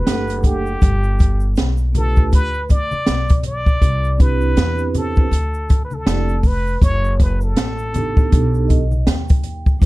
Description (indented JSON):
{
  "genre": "hip hop, jazz-hop",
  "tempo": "80 BPM",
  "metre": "4/4",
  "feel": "swing 58% on 16ths",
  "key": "unclear",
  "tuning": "A4 = 440 Hz",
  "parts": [
    { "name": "trumpet with plunger mute", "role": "melody", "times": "0.0-8.9 s", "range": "G4 to D5", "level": "-24 LUFS", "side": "left 1 dB", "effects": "none" },
    { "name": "upright bass", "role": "bass", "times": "0.0-9.9 s", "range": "F1 to E2", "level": "-20 LUFS", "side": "equal", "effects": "none" },
    { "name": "vibraphone with soft mallets", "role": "accompaniment", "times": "0.1-9.9 s", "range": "G3 to G5", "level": "-24 LUFS", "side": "right 4 dB", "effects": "none" },
    { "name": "open jazz drum kit", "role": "drums", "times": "0.1-9.9 s", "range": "hi-hat, kick drum, snare drum", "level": "-15 LUFS", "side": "equal", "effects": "none" },
    { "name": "egg shaker and congas", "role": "percussion", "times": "0.1-9.9 s", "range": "none", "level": "-28 LUFS", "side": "left 2 dB", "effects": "none" }
  ],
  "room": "little or no reverb",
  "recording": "dark, warm production",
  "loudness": "-15 LUFS",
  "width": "side -19 dB against mid",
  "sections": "0.0-9.8 A section",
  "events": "vibraphone fill 8.3-9.8",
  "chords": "0.0 Gmaj9; 0.8 G7; 3.8 Cmaj9; 6.8 F#m; 8.3 B7alt"
}